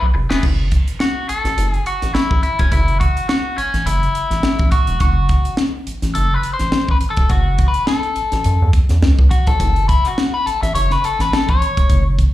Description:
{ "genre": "funk", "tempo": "105 BPM", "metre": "4/4", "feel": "swing 56% on 16ths", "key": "F# minor", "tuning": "A4 = 438 Hz", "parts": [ { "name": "overdriven electric guitar", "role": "accompaniment", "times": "0.0-12.0 s", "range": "E#3 to E5", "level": "-20 LUFS", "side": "left 3 dB", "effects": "wah, plate reverb, slapback echo" }, { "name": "rubbery square bass", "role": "bass", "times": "0.0-12.2 s", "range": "E1 to F#2", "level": "-17 LUFS", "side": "equal", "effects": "none" }, { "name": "crisp fusion drum kit", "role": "drums", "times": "0.3-12.3 s", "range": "crash cymbal, hi-hat, kick drum, snare drum", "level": "-17 LUFS", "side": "equal", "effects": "none" } ], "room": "little or no reverb", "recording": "live gig heard through the venue's PA, club reverb", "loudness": "-14 LUFS", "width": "side -14 dB against mid", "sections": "0.4-12.3 A section", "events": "drum fill 0.0-0.4; overdriven electric guitar solo 0.4-12.3", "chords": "0.4 F#m7" }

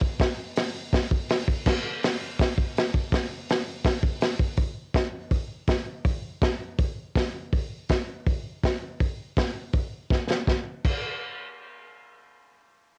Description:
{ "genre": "rock", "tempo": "163 BPM", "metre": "4/4", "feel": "straight", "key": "none", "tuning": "none", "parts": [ { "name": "vintage drum kit", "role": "drums", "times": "0.0-10.9 s", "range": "crash cymbal, hi-hat, kick drum, snare drum", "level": "-27 LUFS", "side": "equal", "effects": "cassette tape" } ], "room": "light reverb", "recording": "home recording on cassette", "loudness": "-27 LUFS", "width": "mono", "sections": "0.0-4.6 A section; 4.6-10.5 B section; 10.5-13.0 C section", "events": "drum fill 10.1-10.5", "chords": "none" }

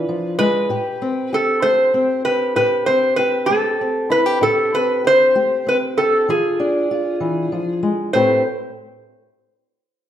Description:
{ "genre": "acoustic country blues, solo or duo", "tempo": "64 BPM (dotted quarters)", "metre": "12/8", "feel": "straight", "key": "A minor", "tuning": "A4 = 438 Hz", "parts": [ { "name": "metal-body resonator slide guitar", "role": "melody", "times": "0.0-8.4 s", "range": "G#4 to C5", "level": "-16 LUFS", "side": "equal", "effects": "none" }, { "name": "fingerpicked old ladder-braced acoustic guitar", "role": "accompaniment", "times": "0.0-8.4 s", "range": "A2 to B4", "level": "-22 LUFS", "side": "left 1 dB", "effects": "none" } ], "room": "moderate recital hall reverb, RT60 1.3 s", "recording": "none", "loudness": "-15 LUFS", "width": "side -10 dB against mid", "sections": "0.0-8.1 A section; 8.1-10.1 B section", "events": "none", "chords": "0.0 E7b9 (rootless); 0.7 Am9; 6.3 E7b9; 8.1 Am9" }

